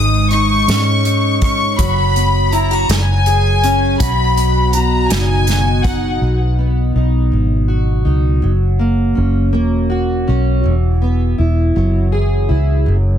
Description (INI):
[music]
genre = six-eight pop ballad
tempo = 54 BPM (dotted quarters)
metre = 6/8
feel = straight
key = B major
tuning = A4 = 439 Hz
[part]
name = warm studio violin section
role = second line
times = 0.0-6.2 s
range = F#5 to D#6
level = -17 LUFS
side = left 3 dB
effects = ping-pong delay
[part]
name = fingerpicked plugged-in steel-string acoustic guitar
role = accompaniment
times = 0.0-13.2 s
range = F#2 to G#4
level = -18 LUFS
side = equal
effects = double-tracked left and right
[part]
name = vintage muted fingered electric bass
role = bass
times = 0.0-13.2 s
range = E1 to G#2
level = -15 LUFS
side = equal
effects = none
[part]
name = unplugged drum kit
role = drums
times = 0.3-6.0 s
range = hi-hat, kick drum, snare drum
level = -19 LUFS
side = right 1 dB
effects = none
[sound]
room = studio ambience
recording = dense, heavily limited modern master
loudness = -12 LUFS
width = side -9 dB against mid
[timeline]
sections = 0.0-6.2 A section; 6.2-13.2 B section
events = none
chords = 0.0 C#sus2/G#; 1.8 B5/F#; 2.9 F#sus2; 4.0 B; 8.4 F#; 10.7 Eadd9